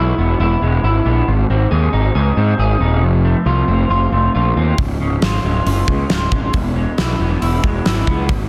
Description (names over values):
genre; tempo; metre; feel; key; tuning
quiet-loud alternative rock; 137 BPM; 4/4; straight; unclear; A4 = 442 Hz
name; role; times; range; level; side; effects
electric guitar through a small old amp; arpeggios; 0.0-8.5 s; Db2 to Ab4; -22 LUFS; equal; analog chorus
fuzz picked electric bass; bass; 0.0-8.5 s; Db1 to Ab2; -18 LUFS; equal; overdrive
big rock drum kit; drums; 4.8-8.4 s; hi-hat, kick drum, snare drum; -21 LUFS; equal; none
room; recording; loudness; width
light reverb, small room ambience; dense, heavily limited modern master; -16 LUFS; mono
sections
0.0-8.5 A section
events
none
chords
0.0 E; 1.3 Ab; 3.0 F; 4.8 Db; 6.5 E